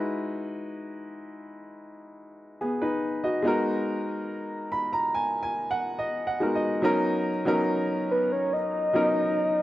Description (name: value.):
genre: R&B.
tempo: 71 BPM.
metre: 4/4.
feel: straight.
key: unclear.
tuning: A4 = 438 Hz.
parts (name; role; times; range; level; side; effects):
warm grand piano; accompaniment; 0.0-9.6 s; F#3 to B5; -26 LUFS; equal; none.
soft octave-layered synth lead; melody; 8.1-9.6 s; B4 to D#5; -24 LUFS; equal; chorus, analog delay.
room: light reverb, studio reverb.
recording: dry, gritty hardware recording.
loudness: -24 LUFS.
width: side -15 dB against mid.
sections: 0.0-6.8 A section; 6.8-9.6 B section.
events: grand piano fill 4.3-6.8.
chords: 0.0 Emaj7; 3.5 G#m9; 6.8 Bmaj7.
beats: | 0.07 0.92 1.76 2.61 | 3.45 4.30 5.14 5.99 | 6.83 7.68 8.52 9.37.